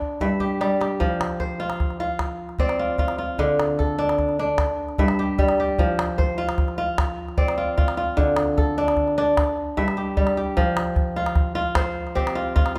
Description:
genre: west african traditional, West African string and xylophone music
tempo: 100 BPM (dotted quarters)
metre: 12/8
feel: straight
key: F major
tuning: A4 = 439 Hz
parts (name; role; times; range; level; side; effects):
- kora; arpeggios; 0.0-12.8 s; G2 to E5; -24 LUFS; equal; none
- calabash; percussion; 0.0-12.8 s; none; -27 LUFS; equal; none
room: moderate recital hall reverb, RT60 1.5 s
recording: none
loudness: -23 LUFS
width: mono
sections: 0.0-10.6 A section; 10.6-12.8 B section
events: drum fill 0.0-1.0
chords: 0.0 Em/G; 1.0 F5; 3.4 Dm; 4.6 Em; 5.8 F5; 8.2 Dm; 9.4 Em; 10.6 F5

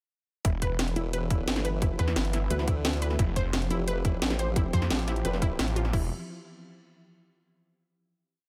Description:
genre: dark technical drum and bass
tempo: 175 BPM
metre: 4/4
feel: straight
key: E phrygian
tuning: A4 = 440 Hz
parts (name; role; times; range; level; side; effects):
- sweeping resonant pad; sustained chords; 0.8-6.1 s; E3 to G4; -39 LUFS; equal; chorus, sidechain pumping
- analog pluck; arpeggios; 0.4-6.1 s; E4 to C5; -38 LUFS; equal; chorus, sidechain pumping, tape echo
- snarling distorted saw bass; bass; 0.4-6.1 s; E1 to F2; -32 LUFS; equal; distortion, overdrive
- drum and bass drum kit; drums; 0.4-6.0 s; crash cymbal, kick drum; -30 LUFS; equal; overdrive
- drum and bass drum kit; drums; 0.4-5.9 s; hi-hat, snare drum; -33 LUFS; equal; overdrive
- formant-sweep wobble bass; bass; 1.0-5.6 s; E1 to D2; -32 LUFS; equal; chorus
room: digital ambience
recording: none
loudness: -28 LUFS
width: mono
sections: 0.4-5.9 drop; 5.9-7.3 final chord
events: drop 0.4-5.9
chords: 0.4 Em; 3.2 F; 5.9 E5

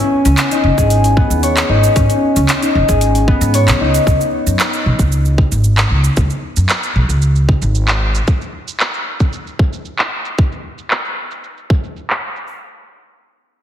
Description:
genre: organic downtempo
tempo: 114 BPM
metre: 4/4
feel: straight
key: unclear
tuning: A4 = 439 Hz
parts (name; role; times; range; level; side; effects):
- concert harp; arpeggios; 0.0-6.5 s; B3 to C#5; -16 LUFS; left 2 dB; digital delay
- upright bass; bass; 0.3-8.2 s; F#1 to G#2; -14 LUFS; equal; none
- afro-pop drum kit; drums; 0.3-12.5 s; handclaps, hi-hat, shaker; -19 LUFS; right 1 dB; low-pass filter on hats, low-pass filter on perc, low-pass filter on snare
- electronic kick drum; drums; 0.8-11.8 s; none; -16 LUFS; equal; none
room: light reverb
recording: heavily compressed radio sound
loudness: -12 LUFS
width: side -10 dB against mid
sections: 0.0-4.1 A section; 4.1-12.5 B section; 12.5-13.6 C section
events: kick drops out 3.5-4.1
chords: 0.0 G#m; 4.1 C#5; 8.3 N.C.

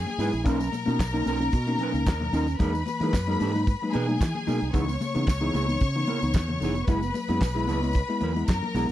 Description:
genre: disco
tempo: 112 BPM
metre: 4/4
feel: straight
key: C# dorian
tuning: A4 = 436 Hz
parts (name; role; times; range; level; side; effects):
- clear studio string section; second line; 0.0-8.9 s; G#4 to C#6; -31 LUFS; left 3 dB; none
- fingered electric bass; bass; 0.0-8.9 s; E#1 to E3; -29 LUFS; equal; none
- mellow electric guitar; accompaniment; 0.1-8.9 s; B3 to B4; -31 LUFS; right 7 dB; none
- tine electric piano; accompaniment; 0.1-8.9 s; B2 to E4; -30 LUFS; left 3 dB; none
- damped 70s drum kit; drums; 0.1-8.9 s; handclaps, hi-hat, kick drum, snare drum; -24 LUFS; equal; none
- congas; percussion; 0.1-8.9 s; none; -36 LUFS; left 4 dB; none
- tambourine; percussion; 0.2-8.9 s; none; -47 LUFS; right 17 dB; none
room: little or no reverb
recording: dry, close 1970s-style studio recording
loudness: -23 LUFS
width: side -13 dB against mid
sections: 0.0-8.9 A section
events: none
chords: 0.5 Bmaj9; 2.6 Emaj9#11; 4.7 C#m7; 6.9 F#9sus4

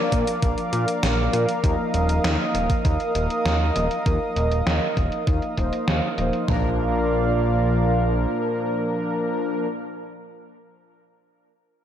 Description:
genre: synthwave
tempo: 99 BPM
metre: 4/4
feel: straight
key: Bb major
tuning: A4 = 439 Hz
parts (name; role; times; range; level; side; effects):
- warm analog pad; sustained chords; 0.0-9.7 s; Bb2 to Eb6; -25 LUFS; right 2 dB; chorus, sidechain pumping
- analog synth brass; stabs; 0.0-9.7 s; F3 to Eb5; -26 LUFS; left 1 dB; chorus, tape echo, slapback echo
- fat analog bass; bass; 0.1-8.3 s; Eb1 to Bb2; -23 LUFS; equal; none
- gated 80s digital drum machine; drums; 0.1-6.6 s; kick drum, toms; -23 LUFS; equal; gated reverb, overdrive
- gated 80s digital drum machine; drums; 0.1-6.5 s; hi-hat, snare drum; -28 LUFS; equal; gated reverb, gated reverb snare, overdrive, low-pass filter on hats, low-pass filter on perc, low-pass filter on snare, low-pass filter on toms, low-pass filter on cymbals
room: wet lush hall reverb, RT60 2.0 s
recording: big arena sound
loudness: -20 LUFS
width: side -9 dB against mid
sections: 0.0-6.5 A section; 6.5-8.9 B section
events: none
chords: 0.0 Bb; 1.6 Ebsus2; 6.5 Bb

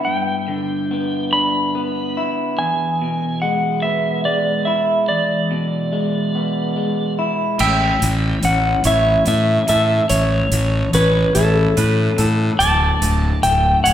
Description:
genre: post-rock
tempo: 48 BPM (dotted quarters)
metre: 6/8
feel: straight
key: unclear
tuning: A4 = 439 Hz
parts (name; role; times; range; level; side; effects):
- clean lap steel guitar; melody; 0.0-13.9 s; A4 to B5; -19 LUFS; equal; none
- electric guitar through a small old amp; arpeggios; 0.0-13.9 s; D2 to A4; -21 LUFS; left 1 dB; none
- twangy electric guitar; arpeggios; 7.6-13.9 s; A4 to E5; -26 LUFS; right 5 dB; none
- fuzz fingered electric bass; bass; 7.6-13.9 s; D1 to A2; -18 LUFS; equal; overdrive
- huge arena drum kit; drums; 7.6-13.9 s; crash cymbal, hi-hat; -27 LUFS; right 4 dB; none
room: wet recital hall reverb, RT60 1.3 s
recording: recorded in a church or concert hall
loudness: -15 LUFS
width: side -10 dB against mid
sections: 0.0-7.6 A section; 7.6-13.9 A section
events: none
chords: 0.0 G6; 2.6 E7; 7.6 A; 12.6 D5

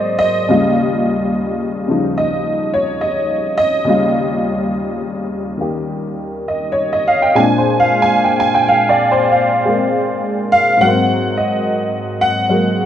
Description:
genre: solo jazz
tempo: 70 BPM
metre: 4/4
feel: swing 66% on 8ths, rubato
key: Eb mixolydian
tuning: A4 = 440 Hz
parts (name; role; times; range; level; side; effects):
- honky-tonk upright piano; solo; 0.0-12.9 s; Eb2 to Ab5; -13 LUFS; equal; none
room: moderate large studio reverb, RT60 1.2 s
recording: none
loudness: -13 LUFS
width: side -10 dB against mid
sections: 0.0-12.9 A section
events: honky-tonk piano solo 0.0-12.9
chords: 0.5 Eb9; 7.4 Bb9; 10.8 Ab9

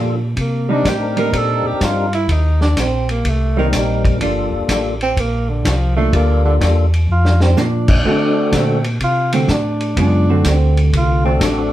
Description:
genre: soul jazz organ trio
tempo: 125 BPM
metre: 4/4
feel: swing 66% on 8ths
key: G minor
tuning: A4 = 439 Hz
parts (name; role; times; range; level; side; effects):
- percussive tonewheel organ; melody; 0.0-11.7 s; G3 to Bb4; -20 LUFS; left 3 dB; slow rotary speaker, chorus vibrato
- vintage hollow-body jazz guitar; accompaniment; 0.0-11.3 s; C#3 to F#4; -20 LUFS; right 3 dB; none
- mellow tonewheel organ; bass; 0.0-11.7 s; G1 to D3; -17 LUFS; equal; slow rotary speaker
- breathy tenor saxophone; melody; 0.4-11.7 s; D3 to Bb4; -20 LUFS; right 2 dB; none
- warm soul drum kit; drums; 0.4-11.6 s; crash cymbal, hi-hat, kick drum, ride cymbal, snare drum; -20 LUFS; equal; none
room: wet studio reverb, RT60 0.6 s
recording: heard from further back in the room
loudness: -13 LUFS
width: side -13 dB against mid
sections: 0.0-11.7 A section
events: tenor saxophone solo 0.0-11.7; drum fill 7.1-7.6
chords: 0.4 Cm7; 4.2 Gm7; 8.0 D7

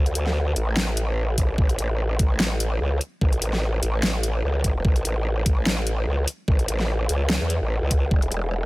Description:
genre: heavy wobble dubstep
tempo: 147 BPM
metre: 4/4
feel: swing 55% on 16ths, half-time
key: unclear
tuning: A4 = 442 Hz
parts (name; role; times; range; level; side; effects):
- growl bass; bass; 0.0-8.7 s; E1 to E2; -23 LUFS; equal; chorus, overdrive
- dubstep drum kit; drums; 0.1-8.4 s; hi-hat, snare drum; -26 LUFS; equal; overdrive
- electronic kick drum; drums; 1.4-8.2 s; none; -20 LUFS; equal; none
room: little or no reverb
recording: none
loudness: -21 LUFS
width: side -20 dB against mid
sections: 0.0-8.7 A section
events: none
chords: none

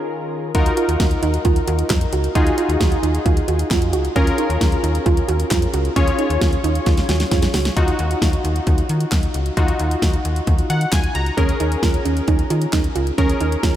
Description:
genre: synth-pop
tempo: 133 BPM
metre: 4/4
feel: straight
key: Eb minor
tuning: A4 = 438 Hz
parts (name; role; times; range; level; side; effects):
- warm analog keys; accompaniment; 0.0-13.8 s; Eb3 to Bb5; -22 LUFS; left 2 dB; chorus
- soft round pluck; arpeggios; 0.5-7.7, 11.4-13.8 s; Db4 to Gb4; -24 LUFS; right 8 dB; chorus, diffuse ambient delay
- slap-like FM bass; bass; 0.5-13.8 s; Db2 to Eb3; -21 LUFS; equal; none
- pop drum kit; drums; 0.5-13.7 s; handclaps, hi-hat, kick drum, snare drum; -20 LUFS; equal; none
room: moderate huge ambient reverb, RT60 9.1 s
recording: dreamy mix soaked in reverb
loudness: -16 LUFS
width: side -11 dB against mid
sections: 0.0-7.8 A section; 7.8-13.8 B section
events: drum fill 6.9-7.8; synth keys fill 10.5-11.4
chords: 0.0 Bbm7/Eb; 0.5 Ebmadd9; 11.4 Bbm7

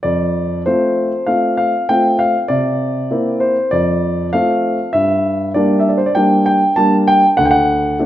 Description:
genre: classical-period piano sonatina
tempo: 98 BPM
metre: 4/4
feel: straight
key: F major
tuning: A4 = 440 Hz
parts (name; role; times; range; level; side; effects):
- warm grand piano; solo; 0.0-8.1 s; D2 to A5; -13 LUFS; equal; none
room: wet recital hall reverb, RT60 1.3 s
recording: minimal, uncompressed stereo recording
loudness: -13 LUFS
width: side -13 dB against mid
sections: 0.0-8.1 A section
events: none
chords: 0.0 F; 2.5 C7; 3.7 F; 4.9 Gm; 7.4 D

